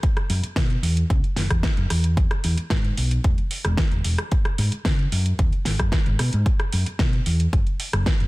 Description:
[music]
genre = nu-disco, nu disco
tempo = 112 BPM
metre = 4/4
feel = straight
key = unclear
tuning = A4 = 440 Hz
[part]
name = electronic kick drum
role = drums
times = 0.0-8.2 s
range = none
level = -22 LUFS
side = equal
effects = small room ambience
[part]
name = pop drum kit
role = drums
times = 0.0-8.3 s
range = hi-hat, rim click, snare drum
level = -27 LUFS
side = equal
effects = small room ambience
[part]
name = hollow-body short-scale fingered electric bass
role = bass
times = 0.3-8.3 s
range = E1 to C#3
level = -22 LUFS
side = equal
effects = sidechain pumping
[sound]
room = little or no reverb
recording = dense, heavily limited modern master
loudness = -19 LUFS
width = side -21 dB against mid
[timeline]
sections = 0.0-8.3 A section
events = none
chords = none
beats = | 0.03 0.57 1.10 1.64 | 2.17 2.71 3.25 3.78 | 4.32 4.85 5.39 5.92 | 6.46 7.00 7.53 8.07

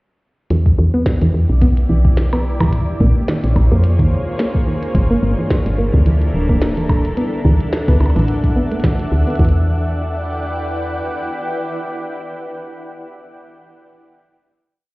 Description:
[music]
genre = IDM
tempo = 108 BPM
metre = 4/4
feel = swing 56% on 16ths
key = unclear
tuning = A4 = 440 Hz
[part]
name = granular cloud pad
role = sustained chords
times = 1.3-12.4 s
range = G3 to G5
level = -24 LUFS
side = equal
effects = built-in reverb
[part]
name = soft round pluck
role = arpeggios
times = 0.5-9.7 s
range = D#3 to B3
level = -21 LUFS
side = right 1 dB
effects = chorus, tape echo
[part]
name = woody FM bass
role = bass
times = 0.5-11.0 s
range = D1 to E#2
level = -15 LUFS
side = equal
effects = none
[part]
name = glitchy drum kit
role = drums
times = 0.5-9.5 s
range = hi-hat, percussion blips, snare drum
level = -25 LUFS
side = equal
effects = none
[part]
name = electronic kick drum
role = drums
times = 0.7-9.5 s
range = none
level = -16 LUFS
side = equal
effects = none
[part]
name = pulsing gated texture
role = texture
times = 4.9-9.4 s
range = D4 to D5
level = -29 LUFS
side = equal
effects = none
[sound]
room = light reverb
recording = heard muffled through a wall, stone room reverb, EQ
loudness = -14 LUFS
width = side -22 dB against mid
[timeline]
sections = 0.5-9.4 groove; 9.4-11.6 final chord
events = none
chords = 0.5 Em7; 2.7 A#m7; 5.0 Gm6; 7.2 Dadd9; 9.4 Em7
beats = | 0.51 1.06 1.62 2.17 | 2.73 3.28 3.84 4.39 | 4.95 5.50 6.06 6.62 | 7.17 7.73 8.28 8.84 | 9.39 9.95 10.51 11.06

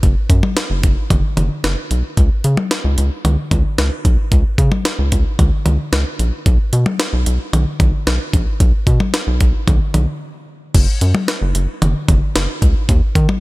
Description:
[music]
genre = synth-pop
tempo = 112 BPM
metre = 4/4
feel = straight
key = unclear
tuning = A4 = 438 Hz
[part]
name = rubbery square bass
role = bass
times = 0.0-13.3 s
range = F#1 to Eb3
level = -16 LUFS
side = equal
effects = none
[part]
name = jungle sampler-style drum kit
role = drums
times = 0.0-13.4 s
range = crash cymbal, hi-hat, kick drum, snare drum, toms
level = -15 LUFS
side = equal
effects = none
[sound]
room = little or no reverb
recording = none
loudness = -14 LUFS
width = side -21 dB against mid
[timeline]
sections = 0.0-10.7 A section; 10.7-13.4 B section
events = break 10.2-10.7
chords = none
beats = | 0.03 0.57 1.10 1.64 | 2.17 2.71 3.25 3.78 | 4.32 4.85 5.39 5.92 | 6.46 7.00 7.53 8.07 | 8.60 9.14 9.68 10.21 | 10.75 11.28 11.82 12.35 | 12.89

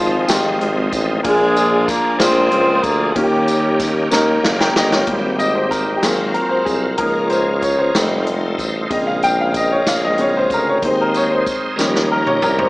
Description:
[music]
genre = slow gospel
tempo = 63 BPM (dotted quarters)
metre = 6/8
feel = straight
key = Ab major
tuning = A4 = 440 Hz
[part]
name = dark horn section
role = melody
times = 0.0-4.1 s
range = F3 to C5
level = -17 LUFS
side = equal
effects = slapback echo
[part]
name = clear upright piano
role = accompaniment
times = 0.0-12.7 s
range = Ab2 to G5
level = -18 LUFS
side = left 1 dB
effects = none
[part]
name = bright tonewheel organ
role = sustained chords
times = 0.0-12.7 s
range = Db3 to C5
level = -24 LUFS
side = right 1 dB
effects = slow rotary speaker, chorus vibrato
[part]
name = warm tuba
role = bass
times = 0.0-12.7 s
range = F1 to Eb2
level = -21 LUFS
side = equal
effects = none
[part]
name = swinging big-band drum kit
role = drums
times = 0.3-12.7 s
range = hi-hat, kick drum, snare drum, toms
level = -23 LUFS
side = equal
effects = none
[part]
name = tambourine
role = percussion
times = 0.3-12.7 s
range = none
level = -30 LUFS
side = right 1 dB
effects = none
[sound]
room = light reverb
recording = small speaker sound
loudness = -14 LUFS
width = side -22 dB against mid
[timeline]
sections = 0.0-5.1 A section; 5.1-12.7 B section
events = drum fill 4.1-5.1, 11.8-12.7; upright piano solo 5.1-12.7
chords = 0.0 Ab6; 1.2 Bb7; 3.2 Eb7; 5.1 Abmaj7; 6.0 Ab13; 7.0 Db6; 8.0 F7; 8.9 Bbm7; 10.8 Ab/Eb; 11.8 Eb7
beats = 0.29 | 1.25 2.21 | 3.16 4.12 | 5.08 6.04 | 6.99 7.95 | 8.91 9.87 | 10.83 11.79

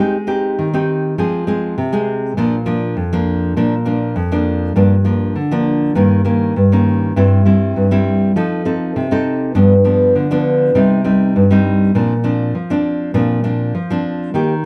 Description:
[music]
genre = samba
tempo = 100 BPM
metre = 4/4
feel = straight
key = unclear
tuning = A4 = 442 Hz
[part]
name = nylon-string guitar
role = solo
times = 0.0-14.7 s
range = F2 to A4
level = -16 LUFS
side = equal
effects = none
[sound]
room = moderate large studio reverb, RT60 0.9 s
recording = none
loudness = -16 LUFS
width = mono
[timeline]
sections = 0.0-14.4 A section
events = none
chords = 0.0 Abmaj7; 1.2 Fm; 2.4 Bb; 4.8 Gm7; 6.0 Eb7/G; 7.2 C/G; 8.4 F7; 9.6 G7; 10.8 Cm; 12.0 Bbadd9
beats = 0.58 1.18 1.77 | 2.37 2.97 3.57 4.17 | 4.76 5.36 5.96 6.56 | 7.16 7.76 8.35 8.95 | 9.55 10.15 10.75 11.35 | 11.95 12.55 13.15 13.75 | 14.35

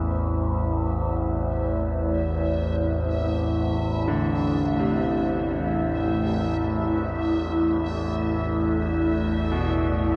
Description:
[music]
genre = dark ambient drone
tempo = free time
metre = none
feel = none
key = A minor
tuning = A4 = 436 Hz
[part]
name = deep dark ambient pad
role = sustained chords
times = 0.0-10.2 s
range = A3 to D5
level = -29 LUFS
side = equal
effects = chorus, built-in reverb
[part]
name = bright grand piano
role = arpeggios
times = 0.0-10.2 s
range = B2 to D3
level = -32 LUFS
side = equal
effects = diffuse ambient delay
[part]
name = overtone-sweeping drone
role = drone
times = 0.0-10.2 s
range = A1 to E2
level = -27 LUFS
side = equal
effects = chorus, built-in reverb
[part]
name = bubbling stepped-filter texture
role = texture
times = 0.0-10.2 s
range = E5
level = -40 LUFS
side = equal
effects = chorus, built-in reverb, shimmer reverb
[sound]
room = wet huge ambient reverb, RT60 7.6 s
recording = dark, warm production, nothing above 11.0 kHz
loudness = -25 LUFS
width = mono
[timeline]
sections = 0.0-10.2 A section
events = none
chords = 0.0 Am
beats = free time

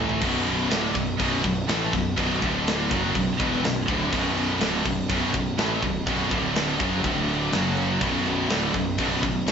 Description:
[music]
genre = heavy metal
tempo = 123 BPM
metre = 4/4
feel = straight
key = B minor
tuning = A4 = 438 Hz
[part]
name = heavy high-gain guitar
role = riff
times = 0.0-9.5 s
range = B1 to A3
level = -31 LUFS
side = left 1 dB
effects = distortion
[part]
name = scooped high-gain guitar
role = riff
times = 0.0-9.5 s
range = B1 to A3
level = -27 LUFS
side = left 5 dB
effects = distortion
[part]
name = scooped high-gain guitar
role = riff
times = 0.0-9.5 s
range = B1 to A3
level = -28 LUFS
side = right 7 dB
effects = distortion
[part]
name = fuzz picked electric bass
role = bass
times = 0.0-9.5 s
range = B0 to A1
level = -30 LUFS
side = equal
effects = overdrive
[part]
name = tight metal drum kit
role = drums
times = 0.1-9.5 s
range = crash cymbal, kick drum, snare drum, toms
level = -28 LUFS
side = equal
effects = none
[sound]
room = moderate studio reverb, RT60 0.7 s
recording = band playing live in one room, nothing above 7.7 kHz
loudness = -22 LUFS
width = side -7 dB against mid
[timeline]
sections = 0.2-9.5 A section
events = drum fill 0.0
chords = 0.2 Bm; 2.4 D5; 2.9 Bm; 6.3 D5; 6.8 F#5; 7.0 D5; 7.5 F#5; 8.0 Bm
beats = | 0.22 0.71 1.20 1.68 | 2.17 2.66 3.15 3.63 | 4.12 4.61 5.10 5.58 | 6.07 6.56 7.04 7.53 | 8.02 8.51 8.99 9.48

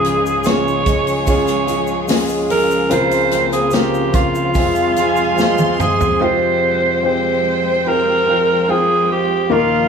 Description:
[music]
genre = pop ballad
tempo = 73 BPM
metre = 4/4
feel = straight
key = F minor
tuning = A4 = 440 Hz
[part]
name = growling alto saxophone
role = melody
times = 0.0-9.9 s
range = F4 to Db5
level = -16 LUFS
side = right 2 dB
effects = none
[part]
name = dark concert grand piano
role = accompaniment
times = 0.0-9.9 s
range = Db2 to G5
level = -19 LUFS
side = left 3 dB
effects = none
[part]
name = warm studio string section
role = sustained chords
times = 0.0-9.9 s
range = C3 to G5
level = -25 LUFS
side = equal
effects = none
[part]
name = fingerpicked steel-string acoustic guitar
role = arpeggios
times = 0.0-6.8 s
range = F2 to F4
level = -25 LUFS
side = right 7 dB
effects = tape echo
[part]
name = natural country drum kit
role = drums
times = 0.0-6.2 s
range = hi-hat, kick drum, snare drum, toms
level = -20 LUFS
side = equal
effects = none
[part]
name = tube shaker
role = percussion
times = 0.1-6.2 s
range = none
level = -38 LUFS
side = left 5 dB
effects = none
[part]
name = clear studio violin section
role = second line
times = 5.0-6.2 s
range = Ab5 to C6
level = -26 LUFS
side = right 1 dB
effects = none
[sound]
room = light reverb, small room ambience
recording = studio reverb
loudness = -13 LUFS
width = side -6 dB against mid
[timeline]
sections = 0.0-6.2 A section; 6.2-9.9 A section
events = drum fill 5.4-6.2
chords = 0.0 Db; 2.9 Bbmadd9/Db; 4.6 Fm; 6.2 Fmadd9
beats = 0.46 1.27 2.09 | 2.91 3.73 4.55 5.38 | 6.21 7.04 7.86 8.69 | 9.51

